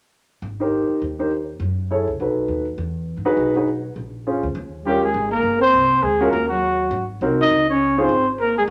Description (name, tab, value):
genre	jazz, small-group swing and bop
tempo	204 BPM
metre	4/4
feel	swing 60% on 8ths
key	Ab major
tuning	A4 = 440 Hz
part	upright bass	bass	0.4-8.7 s	G1 to G#2	-32 LUFS	equal	none
part	warm grand piano	accompaniment	0.6-8.1 s	C4 to Db5	-23 LUFS	equal	none
part	breathy trombone	second line	4.8-8.6 s	Gb3 to Eb4	-25 LUFS	equal	none
part	breathy trumpet	melody	4.9-8.6 s	Gb4 to Eb5	-20 LUFS	equal	none
room	wet large studio reverb, RT60 1.1 s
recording	none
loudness	-20 LUFS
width	mono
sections	0.4-5.1 A section; 5.1-8.7 B section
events	none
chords	0.4 Abmaj7; 1.6 Gbm7; 2.2 B7; 2.8 Emaj7; 4.0 Bbm7; 4.6 Eb7; 5.1 Abmaj7; 6.3 Ebm; 6.9 Ab7; 7.5 Dbmaj7(no3)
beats	| 0.43 0.72 1.02 1.31 | 1.61 1.90 2.20 2.49 | 2.79 3.08 3.38 3.67 | 3.97 4.26 4.56 4.85 | 5.15 5.44 5.74 6.03 | 6.32 6.62 6.91 7.21 | 7.50 7.80 8.09 8.38 | 8.68